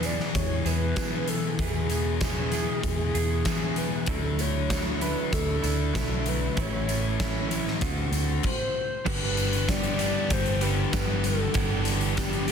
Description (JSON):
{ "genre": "rock, shoegaze and dream pop", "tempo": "96 BPM", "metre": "4/4", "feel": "straight", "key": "D lydian", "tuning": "A4 = 439 Hz", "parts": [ { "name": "pure sine lead", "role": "melody", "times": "0.0-12.5 s", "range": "G4 to D5", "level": "-32 LUFS", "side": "equal", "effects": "chorus, digital delay" }, { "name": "direct-recorded clean electric guitar", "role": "riff", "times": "0.0-12.5 s", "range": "E2 to G#4", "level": "-33 LUFS", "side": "right 13 dB", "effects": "reverse reverb" }, { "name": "thick fuzz guitar", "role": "riff", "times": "0.0-12.5 s", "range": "E2 to D4", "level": "-31 LUFS", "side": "left 13 dB", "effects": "distortion, lush chorus" }, { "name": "vintage muted fingered electric bass", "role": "bass", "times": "0.0-12.5 s", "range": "G1 to E3", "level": "-30 LUFS", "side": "equal", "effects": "none" }, { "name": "big rock drum kit", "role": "drums", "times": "0.0-12.5 s", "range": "crash cymbal, hi-hat, kick drum, snare drum", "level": "-30 LUFS", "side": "equal", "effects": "none" }, { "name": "tambourine", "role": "percussion", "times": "0.0-12.3 s", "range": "none", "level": "-44 LUFS", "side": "right 18 dB", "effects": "none" }, { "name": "cranked stack guitar", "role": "riff", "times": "9.1-12.5 s", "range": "G2 to D4", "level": "-33 LUFS", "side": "left 1 dB", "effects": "overdrive" } ], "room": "little or no reverb", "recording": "dense, heavily limited modern master", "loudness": "-24 LUFS", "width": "side -7 dB against mid", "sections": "0.0-9.1 A section; 9.1-12.5 B section", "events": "none", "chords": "0.0 E; 4.1 Dadd9; 6.6 A; 7.8 D7; 9.1 G6", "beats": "0.35 0.97 | 1.59 2.22 2.84 3.46 | 4.08 4.71 5.33 5.95 | 6.57 7.19 7.82 8.44 | 9.06 9.68 10.31 10.93 | 11.55 12.17" }